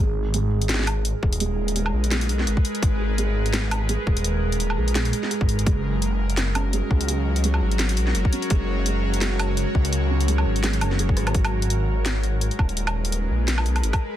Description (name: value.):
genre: half-time drum and bass.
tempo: 169 BPM.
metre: 4/4.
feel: swing 56% on 16ths, half-time.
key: G# minor.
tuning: A4 = 440 Hz.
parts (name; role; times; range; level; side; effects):
bowed-like drone; sustained chords; 1.0-14.2 s; F#3 to C#5; -29 LUFS; equal; built-in reverb, vintage 12-bit sampler grit, sidechain pumping.
felt-muted upright piano; arpeggios; 0.0-11.4 s; G#3 to G#4; -30 LUFS; right 5 dB; tape echo.
phased detuned saw bass; bass; 0.0-13.9 s; D#1 to C#2; -23 LUFS; equal; phaser.
drum and bass drum kit; drums; 0.3-14.0 s; hi-hat, rim click, snare drum, woodblock; -27 LUFS; equal; none.
electronic kick drum; drums; 1.2-14.0 s; none; -21 LUFS; equal; overdrive.
room: little or no reverb.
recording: dense, heavily limited modern master.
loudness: -20 LUFS.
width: side -12 dB against mid.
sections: 0.0-11.3 A section; 11.3-14.2 A section.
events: drop 0.0-11.3, 11.3-14.2; drum fill 11.2.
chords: 0.0 G#madd9; 5.7 F#; 11.3 G#madd9.